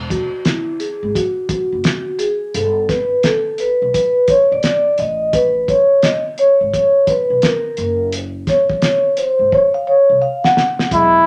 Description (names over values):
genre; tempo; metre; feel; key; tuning
hip hop, jazz-hop; 86 BPM; 4/4; swing 64% on 16ths; unclear; A4 = 440 Hz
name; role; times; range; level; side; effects
upright bass; bass; 0.0-11.2 s; E1 to C2; -30 LUFS; equal; none
vibraphone with soft mallets; accompaniment; 0.1-11.3 s; F#3 to F#5; -16 LUFS; equal; none
cloth-damped thuddy drum kit; drums; 0.1-11.1 s; hi-hat, kick drum, snare drum; -22 LUFS; equal; none
breathy flugelhorn; melody; 10.9-11.3 s; E4; -12 LUFS; equal; none
room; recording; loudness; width
moderate studio reverb, RT60 0.6 s; none; -16 LUFS; mono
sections
0.0-10.9 A section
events
vibraphone solo 0.0-10.9; drum fill 9.5-10.9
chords
0.0 Eadd9; 2.5 Gadd9; 5.0 Aadd9; 7.8 F#5